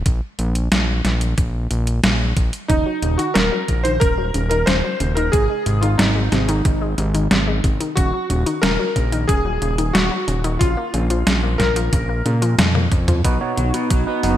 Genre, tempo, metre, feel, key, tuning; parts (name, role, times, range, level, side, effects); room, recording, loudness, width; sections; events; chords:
synthwave; 91 BPM; 4/4; straight; Eb dorian; A4 = 440 Hz
fat analog bass; bass; 0.0-14.4 s; Eb1 to Bb2; -20 LUFS; equal; sidechain pumping
detuned 8-bit digital drum machine; drums; 0.1-14.4 s; hi-hat, snare drum, toms; -20 LUFS; equal; overdrive, high-pass filter on hats, studio ambience, high-pass filter on snare, high-pass filter on toms, gated reverb
electronic kick drum; drums; 0.1-14.0 s; -19 LUFS; equal; overdrive, studio ambience
warm electric grand piano; melody; 2.7-12.5 s; Eb4 to C5; -22 LUFS; equal; ensemble chorus, digital delay
analog pluck; arpeggios; 2.7-14.4 s; C3 to B3; -26 LUFS; left 2 dB; chorus, ping-pong delay
warm analog pad; sustained chords; 13.2-14.4 s; B3 to F#4; -23 LUFS; right 1 dB; chorus, sidechain pumping
crunchy overdriven guitar; riff; 13.2-14.3 s; B2 to B3; -28 LUFS; left 1 dB; wide subtle chorus, low-pass filter, ping-pong delay
overdriven tine electric piano; stabs; 13.2-14.4 s; B3 to Db5; -23 LUFS; right 4 dB; low-pass filter, ping-pong delay
light reverb; bright 1980s-style digital production; -16 LUFS; side -12 dB against mid
0.0-13.2 A section; 13.2-14.4 B section
drum fill 12.6-13.2, 13.2-14.4
0.1 N.C.; 2.7 Ebm7; 5.3 Ab; 8.0 Ebm7; 10.6 Bbm; 13.2 B